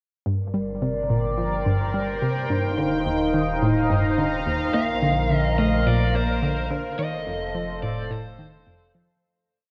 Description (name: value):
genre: ambient, sequencer-driven space music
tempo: 107 BPM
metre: 4/4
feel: straight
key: G minor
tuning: A4 = 440 Hz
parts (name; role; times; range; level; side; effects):
- sweeping resonant pad; sustained chords; 0.3-9.2 s; Eb4 to Bb5; -28 LUFS; equal; chorus
- analog pluck; riff; 0.3-9.1 s; Eb2 to Bb3; -27 LUFS; equal; chorus, analog delay
- round analog bass; bass; 0.3-9.2 s; Eb1 to Bb1; -31 LUFS; equal; none
- wind-like tuned noise texture; texture; 0.9-9.2 s; C5; -38 LUFS; equal; built-in reverb
- lead guitar through a small cranked amp; melody; 4.7-8.9 s; C5 to F5; -31 LUFS; equal; overdrive, analog delay
room: wet plate reverb, RT60 2.8 s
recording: worn, warbling old tape, cassette tape, warbly pitch drift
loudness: -23 LUFS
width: mono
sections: 0.3-9.2 A section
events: fade-out 6.2-9.2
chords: 0.3 Gm; 2.5 Ebadd9; 4.7 Bb; 7.0 F